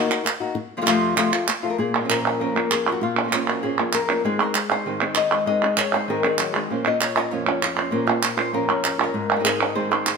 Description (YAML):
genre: flamenco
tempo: 196 BPM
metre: 4/4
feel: straight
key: Bb minor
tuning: A4 = 440 Hz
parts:
  - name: flamenco guitar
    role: melody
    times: 0.0-10.2 s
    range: F2 to Eb5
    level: -23 LUFS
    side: left 5 dB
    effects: none
  - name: palmas hand claps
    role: percussion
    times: 0.1-10.2 s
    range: none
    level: -22 LUFS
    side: right 5 dB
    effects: none
  - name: flamenco guitar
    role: stabs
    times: 1.8-10.1 s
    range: Ab2 to Ab4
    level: -28 LUFS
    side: right 6 dB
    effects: none
room: wet stone room reverb, RT60 1.3 s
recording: minimal, uncompressed stereo recording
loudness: -19 LUFS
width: side -5 dB against mid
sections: 0.0-1.8 A section; 1.8-10.2 B section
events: none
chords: 0.0 Ebm; 0.6 F; 1.8 Bbm; 4.2 Ab; 6.7 Bbm; 9.1 Ab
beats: 0.26 | 0.57 0.87 1.18 1.49 | 1.79 2.10 2.40 2.71 | 3.02 3.32 3.63 3.94 | 4.24 4.55 4.86 5.16 | 5.47 5.78 6.08 6.39 | 6.69 7.00 7.31 7.61 | 7.92 8.22 8.53 8.84 | 9.14 9.45 9.75 10.06